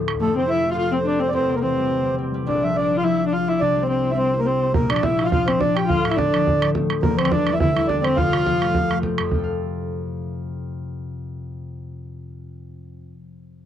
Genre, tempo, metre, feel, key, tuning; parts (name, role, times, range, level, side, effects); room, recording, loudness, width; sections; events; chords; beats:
celtic folk, Celtic reel; 210 BPM; 4/4; swing 54% on 8ths; F major; A4 = 441 Hz
concert harp; accompaniment; 0.0-13.1 s; D1 to F5; -24 LUFS; left 2 dB
bodhran; percussion; 0.1-0.2, 4.7-9.5 s; -24 LUFS; right 4 dB
mellow accordion; melody; 0.2-9.0 s; A4 to G5; -22 LUFS; right 3 dB
dark viola; second line; 0.2-9.0 s; A3 to G4; -24 LUFS; left 4 dB
little or no reverb; dry, close 1970s-style studio recording; -18 LUFS; side -10 dB against mid
0.2-9.3 A section; 9.3-11.6 B section
0.2 F; 1.3 C/E; 2.5 Bb; 3.6 C; 4.7 Bb; 5.9 Dm; 7.0 Em7b5; 8.2 F
| 0.20 0.49 0.77 1.05 | 1.34 1.62 1.91 2.19 | 2.47 2.76 3.04 3.33 | 3.61 3.90 4.18 4.46 | 4.75 5.03 5.32 5.60 | 5.89 6.17 6.46 6.75 | 7.03 7.32 7.60 7.89 | 8.17 8.46 8.74 9.03 | 9.31 9.60 9.88 10.17 | 10.45 10.74 11.02 11.31